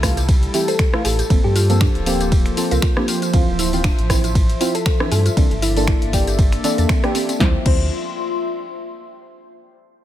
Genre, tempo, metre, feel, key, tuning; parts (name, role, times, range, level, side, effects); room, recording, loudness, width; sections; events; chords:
deep house; 118 BPM; 4/4; swing 56% on 16ths; D minor; A4 = 440 Hz
hollow soft pad; sustained chords; 0.0-7.6 s; F3 to E5; -31 LUFS; left 2 dB; chorus, sidechain pumping
deep mellow chord stab; stabs; 0.0-7.9 s; E3 to C5; -24 LUFS; equal; chorus, sidechain pumping, dub echo
sub bass with octave; bass; 0.0-7.9 s; D1 to G2; -20 LUFS; equal; sidechain pumping
electronic kick drum; drums; 0.0-7.8 s; -17 LUFS; equal
punchy analog drum machine; drums; 0.0-7.8 s; crash cymbal, finger snaps, hi-hat, ride cymbal, rim click, snare drum, tambourine; -25 LUFS; left 1 dB
warbly tape-like pad; texture; 0.0-9.4 s; F3 to C6; -28 LUFS; left 1 dB; chorus, built-in reverb, sidechain pumping
mallet-like synth pluck; arpeggios; 0.2-7.9 s; C4 to C5; -29 LUFS; right 3 dB; chorus, cassette tape, sidechain pumping, ping-pong delay
thumb-piano-like synth pluck; melody; 0.7-6.0 s; E4 to A4; -27 LUFS; left 2 dB; chorus, ping-pong delay
little or no reverb; -15 LUFS; side -12 dB against mid
0.0-7.4 A section; 7.4-9.4 B section
drop 0.0-7.4
0.0 Fmaj9; 1.3 Gm11; 3.1 Dm9; 5.4 C13; 7.4 Dm9